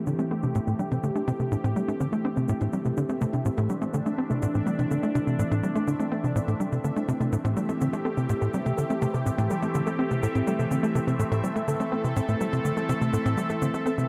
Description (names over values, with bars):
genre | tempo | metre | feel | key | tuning
ambient, sequencer-driven space music | 124 BPM | 4/4 | straight | A minor | A4 = 440 Hz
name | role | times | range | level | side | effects
phased analog pad | sustained chords | 0.0-14.1 s | E3 to A4 | -32 LUFS | equal | phaser, chorus
soft round pluck | arpeggios | 0.0-14.0 s | A3 to A4 | -34 LUFS | equal | chorus, delay
bubbling stepped-filter texture | texture | 0.0-14.1 s | E5 | -46 LUFS | equal | chorus, built-in reverb
tight sequencer bass | riff | 0.1-14.1 s | A2 to C4 | -30 LUFS | equal | lush chorus, delay
cabasa and percussion blips | percussion | 0.1-14.1 s | none | -50 LUFS | equal | overdrive, delay
room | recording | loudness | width
moderate huge ambient reverb, RT60 9.2 s | none | -27 LUFS | mono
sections
0.0-14.1 A section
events
fade-in on synth texture 0.0-14.1; fade-in on drum 0.0-14.1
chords
0.0 Am7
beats
0.07 0.55 1.04 | 1.52 2.00 2.49 2.97 | 3.46 3.94 4.42 4.91 | 5.39 5.88 6.36 6.84 | 7.33 7.81 8.29 8.78 | 9.26 9.75 10.23 10.71 | 11.20 11.68 12.16 12.65 | 13.13 13.62